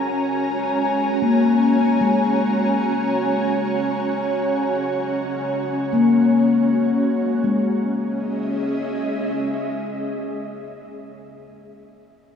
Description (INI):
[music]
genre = ambient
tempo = free time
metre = none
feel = none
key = C# dorian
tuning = A4 = 440 Hz
[part]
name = ethereal airy pad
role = sustained chords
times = 0.0-10.9 s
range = C#4 to A#5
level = -22 LUFS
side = right 1 dB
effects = ensemble chorus, built-in reverb
[part]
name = handpan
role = arpeggios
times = 0.0-11.5 s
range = G#3 to C#4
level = -20 LUFS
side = left 3 dB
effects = dub echo
[part]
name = bowed-like drone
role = drone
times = 0.0-10.9 s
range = C#3 to G#3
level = -29 LUFS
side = left 2 dB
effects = built-in reverb, phaser
[sound]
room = wet spring reverb, RT60 2.2 s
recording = echo-heavy mix, studio reverb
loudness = -18 LUFS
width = side -7 dB against mid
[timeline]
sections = 0.0-7.4 A section; 7.4-10.1 B section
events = none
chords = 0.0 F#add9/C#; 7.4 C#madd9